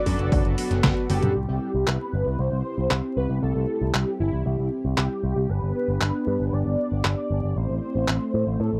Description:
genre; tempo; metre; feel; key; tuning
italo disco; 116 BPM; 4/4; straight; unclear; A4 = 440 Hz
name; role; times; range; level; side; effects
unison lead; melody; 0.0-8.8 s; E4 to D5; -32 LUFS; equal; ensemble chorus, vintage 12-bit sampler grit, tape echo
warm analog pad; sustained chords; 0.0-8.8 s; A3 to D6; -32 LUFS; equal; chorus
chorused polysynth; stabs; 0.0-1.3 s; F#3 to A4; -32 LUFS; equal; tape echo
picked electric bass with an envelope filter; bass; 0.1-8.8 s; F#1 to A2; -27 LUFS; equal; none
detuned 8-bit digital drum machine; drums; 0.1-8.2 s; handclaps, hi-hat, snare drum, toms; -28 LUFS; equal; overdrive
electronic kick drum; drums; 0.1-0.9 s; none; -28 LUFS; equal; overdrive
room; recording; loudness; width
light reverb; dry, close 1970s-style studio recording, vinyl crackle; -24 LUFS; mono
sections
0.0-1.4 A section; 1.4-8.8 B section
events
band accent 0.8; drum fill 1.1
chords
0.0 Bm7/F#; 1.4 C; 5.5 G; 7.6 Am

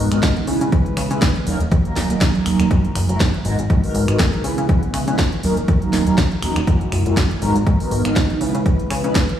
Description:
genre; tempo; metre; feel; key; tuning
filtered disco house; 121 BPM; 4/4; swing 55% on 16ths; C# dorian; A4 = 440 Hz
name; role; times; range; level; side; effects
mellow synth brass; accompaniment; 0.0-9.1 s; F#3 to B4; -21 LUFS; right 1 dB; chorus, phaser, sidechain pumping
plucky analog bass; bass; 0.0-9.3 s; D#1 to C#3; -21 LUFS; equal; sidechain pumping
house drum kit; drums; 0.1-9.4 s; finger snaps, hi-hat, snare drum; -25 LUFS; right 1 dB; sidechain pumping on hats, sidechain pumping on cymbals
electronic kick drum; drums; 0.2-9.3 s; none; -18 LUFS; equal; overdrive
room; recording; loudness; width
light reverb; played on a big sound system in a bare room, large studio reverb; -16 LUFS; side -10 dB against mid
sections
0.0-9.4 A section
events
none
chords
0.5 C#m7; 1.5 D#m7; 2.7 F#9; 3.5 G#m9; 4.4 C#m7; 5.4 D#m7; 6.7 F#9; 7.4 G#m9; 8.4 C#m7

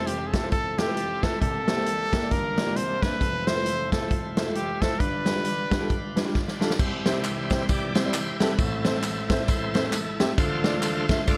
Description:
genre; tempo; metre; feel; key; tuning
uptempo gospel; 134 BPM; 4/4; swing 60% on 8ths; C major; A4 = 440 Hz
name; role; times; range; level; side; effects
bright trumpet; melody; 0.0-6.3 s; G4 to C5; -31 LUFS; equal; analog delay
warm grand piano; accompaniment; 0.0-11.4 s; F1 to E5; -32 LUFS; equal; none
bright tonewheel organ; sustained chords; 0.0-11.4 s; A2 to D5; -34 LUFS; equal; fast rotary speaker, overdrive
swinging big-band drum kit; drums; 0.1-11.4 s; crash cymbal, hi-hat, kick drum, ride cymbal, snare drum; -29 LUFS; equal; none
tambourine and handclaps; percussion; 6.8-11.4 s; none; -38 LUFS; equal; none
room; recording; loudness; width
moderate studio reverb, RT60 0.6 s; dark, warm production; -25 LUFS; mono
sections
0.0-6.8 A section; 6.8-11.4 B section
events
drum fill 6.3-6.8; tonewheel organ solo 6.8-11.4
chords
0.0 Fmaj7; 1.4 C7; 2.3 Gm7; 2.8 C9; 3.2 Fmaj7; 5.0 G7; 6.8 C; 8.6 Am; 10.4 Dm

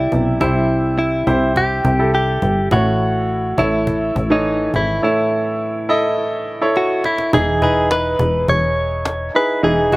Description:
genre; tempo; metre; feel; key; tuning
piano-driven pop; 104 BPM; 4/4; straight; unclear; A4 = 440 Hz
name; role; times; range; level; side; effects
direct-recorded clean electric guitar; melody; 0.0-10.0 s; D#4 to C#5; -18 LUFS; equal; none
clear concert grand piano; accompaniment; 0.0-10.0 s; A2 to D#5; -19 LUFS; right 1 dB; none
plucky analog bass; bass; 0.0-10.0 s; E1 to C2; -20 LUFS; equal; none
cajon; drums; 0.1-10.0 s; none; -24 LUFS; equal; none
room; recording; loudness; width
little or no reverb; recorded outdoors, with no room sound; -15 LUFS; side -21 dB against mid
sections
0.0-7.3 A section; 7.3-10.0 B section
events
drum fill 6.8-7.3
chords
0.0 C; 2.7 A; 7.3 Emaj7

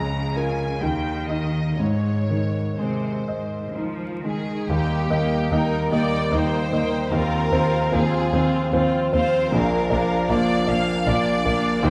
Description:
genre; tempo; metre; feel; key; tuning
classical, romantic movement for piano and orchestra; 58-79 BPM; 3/4; rubato; Ab major, Eb major from 4.7 s; A4 = 440 Hz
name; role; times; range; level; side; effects
rich symphonic violin section; melody; 0.0-11.9 s; C5 to Bb5; -36 LUFS; equal; none
warm grand piano; melody; 0.0-11.9 s; Bb1 to Eb5; -25 LUFS; equal; none
rich symphonic cello section; bass; 0.0-11.9 s; Eb2 to F3; -31 LUFS; equal; none
clear studio violin section; second line; 4.2-11.9 s; G4 to F5; -29 LUFS; equal; none
rich symphonic viola section; accompaniment; 4.7-11.9 s; Bb3 to F4; -31 LUFS; equal; none
mellow French horn section; sustained chords; 4.7-11.9 s; F3 to Eb4; -31 LUFS; equal; none
warm symphonic double bass section; bass; 4.7-11.9 s; Bb1 to Eb2; -32 LUFS; equal; none
room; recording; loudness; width
moderate scoring stage reverb, RT60 1.7 s; vinyl crackle; -22 LUFS; mono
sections
0.0-4.7 A section; 4.7-11.9 B section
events
none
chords
0.0 Bbm/Db; 0.8 Eb; 1.8 Ab; 4.7 Eb; 7.1 Fm/Eb; 9.5 Bb

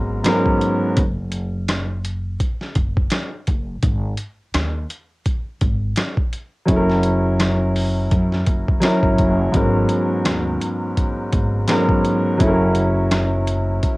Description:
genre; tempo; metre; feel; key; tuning
hip hop, boom-bap hip-hop; 84 BPM; 4/4; swing 58% on 16ths; G# minor; A4 = 435 Hz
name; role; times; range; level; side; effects
dark baby grand piano; accompaniment; 0.0-1.0, 6.7-14.0 s; G#2 to A#4; -18 LUFS; equal; cassette tape
upright bass; bass; 0.0-13.8 s; F#1 to F#2; -22 LUFS; equal; none
boom bap sampler-style drum kit; drums; 0.2-14.0 s; hi-hat, kick drum, rim click, snare drum; -21 LUFS; equal; cassette tape
room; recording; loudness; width
light reverb; home recording on cassette; -17 LUFS; side -22 dB against mid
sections
0.0-14.0 A section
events
break 1.0-6.7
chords
0.0 G#m11; 1.0 N.C.; 3.8 G#5; 6.7 F#7; 9.5 G#m11; 12.4 F#7

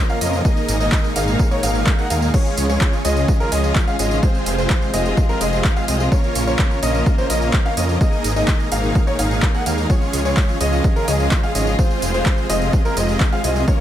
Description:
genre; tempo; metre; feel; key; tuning
EDM, festival progressive house; 127 BPM; 4/4; straight; Db major; A4 = 440 Hz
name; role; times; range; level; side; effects
rich chamber string section; sustained chords; 0.0-13.8 s; Bb2 to F4; -27 LUFS; left 2 dB; sidechain pumping
warm grand piano; arpeggios; 0.0-13.8 s; Bb4 to Gb5; -26 LUFS; left 1 dB; sidechain pumping, ping-pong delay
dense compressed supersaw; riff; 0.0-13.8 s; Ab3 to Gb5; -23 LUFS; right 2 dB; sidechain pumping, ping-pong delay
big-room dance drum kit; drums; 0.1-13.8 s; crash cymbal, handclaps, hi-hat, tambourine; -26 LUFS; right 1 dB; overdrive
detuned saw bass; bass; 0.2-13.6 s; F1 to F2; -21 LUFS; equal; sidechain pumping
electronic kick drum; drums; 0.4-13.8 s; none; -17 LUFS; equal; none
room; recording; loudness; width
little or no reverb; none; -16 LUFS; side -11 dB against mid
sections
0.0-13.8 A section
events
none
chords
0.4 Absus2; 2.3 Db; 4.2 Fm; 6.1 Bbm; 8.0 Absus2; 9.9 Db; 11.8 Fm

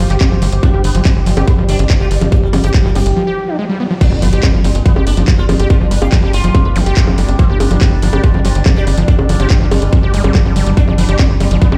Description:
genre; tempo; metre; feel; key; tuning
psychedelic trance; 142 BPM; 4/4; straight; unclear; A4 = 439 Hz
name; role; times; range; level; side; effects
sitar; melody; 0.0-11.8 s; D3 to G4; -26 LUFS; equal; phaser, sidechain pumping, tape echo
overtone-sweeping drone; sustained chords; 0.0-11.8 s; G3 to G4; -28 LUFS; equal; chorus, built-in reverb, sidechain pumping
overdriven acid bass; riff; 0.0-11.8 s; F3 to G4; -22 LUFS; equal; distortion, cassette tape, sidechain pumping, tape echo
tight sequencer bass; bass; 0.0-11.8 s; G1; -16 LUFS; equal; none
drum and bass drum kit; drums; 0.0-11.8 s; bongos, crash cymbal, handclaps, hi-hat; -23 LUFS; equal; none
airy breathy pad; texture; 0.0-11.8 s; G3 to D6; -32 LUFS; equal; none
electronic kick drum; drums; 0.2-11.7 s; none; -13 LUFS; equal; none
riser, impact and zap; sound effects; 2.7-6.9 s; none; -26 LUFS; equal; none
resonant blip pluck; second line; 5.1-6.7 s; B4 to F5; -36 LUFS; equal; none
room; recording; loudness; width
digital ambience; played on a big sound system in a bare room, large studio reverb; -12 LUFS; mono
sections
0.0-4.0 A section; 4.0-11.8 B section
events
riser 2.7-4.0; break 3.2-4.0; drop 4.0-11.8; impact 4.0-5.7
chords
0.0 G5

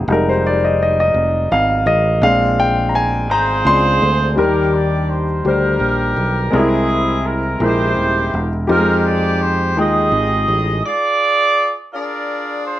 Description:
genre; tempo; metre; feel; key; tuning
slow gospel; 56 BPM (dotted quarters); 6/8; straight; Eb major; A4 = 440 Hz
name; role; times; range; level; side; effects
warm grand piano; accompaniment; 0.0-10.9 s; C3 to C6; -16 LUFS; left 1 dB; none
fingered electric bass; bass; 0.0-10.8 s; Eb1 to F2; -19 LUFS; equal; none
warm horn section; melody; 3.3-12.8 s; D4 to Eb5; -18 LUFS; right 2 dB; slapback echo
room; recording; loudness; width
little or no reverb; recorded outdoors, with no room sound; -14 LUFS; side -13 dB against mid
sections
0.0-4.4 A section; 4.4-12.8 B section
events
grand piano solo 0.0-4.4; stop 10.8-12.8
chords
0.1 Fm9; 2.2 Bb9; 4.4 Ebmaj7; 6.5 C7b13; 8.7 Fm9; 10.8 Bb7

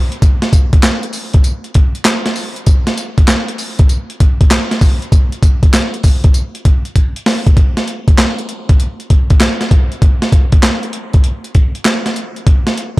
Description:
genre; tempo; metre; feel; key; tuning
R&B; 98 BPM; 4/4; swing 66% on 16ths; none; none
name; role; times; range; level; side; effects
breakbeat sampler-style drum kit; drums; 0.1-13.0 s; handclaps, hi-hat, kick drum, snare drum, tambourine; -10 LUFS; equal; none
room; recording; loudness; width
light reverb; dark, warm production; -10 LUFS; side -20 dB against mid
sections
0.0-7.6 A section; 7.6-13.0 B section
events
drum fill 7.0-7.6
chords
none

